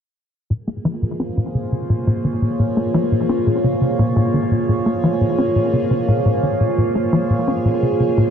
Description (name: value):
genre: ambient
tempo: 86 BPM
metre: 4/4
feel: straight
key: Bb minor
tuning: A4 = 440 Hz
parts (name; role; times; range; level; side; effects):
- evolving wavetable pad; sustained chords; 0.9-8.3 s; Bb3 to Db5; -20 LUFS; right 1 dB; phaser, built-in reverb
- tight sequencer bass; riff; 0.5-8.3 s; Bb2 to Db4; -18 LUFS; left 1 dB; lush chorus, analog delay
room: wet huge ambient reverb, RT60 8.7 s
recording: dark, warm production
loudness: -16 LUFS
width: side -8 dB against mid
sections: 0.5-8.3 A section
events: filter sweep on analog synth bass 0.5-8.3; filter sweep on ambient pad 0.5-8.3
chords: 0.5 Bbm7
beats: | 0.50 1.20 1.90 2.59 | 3.29 3.99 4.69 5.38 | 6.08 6.78 7.48 8.18